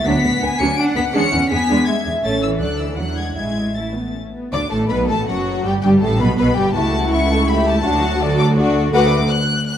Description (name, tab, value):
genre	quick classical-period movement for string orchestra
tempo	164 BPM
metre	3/4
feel	rubato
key	A major, D major from 4.5 s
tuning	A4 = 440 Hz
part	warm symphonic violin section	melody	0.0-9.8 s	F#5 to D7	-24 LUFS	left 4 dB	none
part	warm symphonic violin section	second line	0.0-9.1 s	E4 to G#5	-22 LUFS	left 3 dB	none
part	warm symphonic cello section	bass	0.0-9.2 s	C#2 to D4	-21 LUFS	right 1 dB	none
part	dark symphonic viola section	accompaniment	0.1-9.1 s	F#3 to B4	-22 LUFS	equal	none
part	dark symphonic double bass section	bass	0.1-9.2 s	F#1 to E2	-22 LUFS	right 1 dB	none
room	wet scoring stage reverb, RT60 1.8 s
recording	dark, warm production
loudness	-15 LUFS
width	side -9 dB against mid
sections	0.0-4.5 A section; 4.5-9.8 B section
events	none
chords	0.1 Bm/D; 1.1 E7; 2.2 A; 2.6 D; 3.0 E7; 3.4 A; 4.5 D; 5.7 G; 6.8 A7/C#; 7.9 D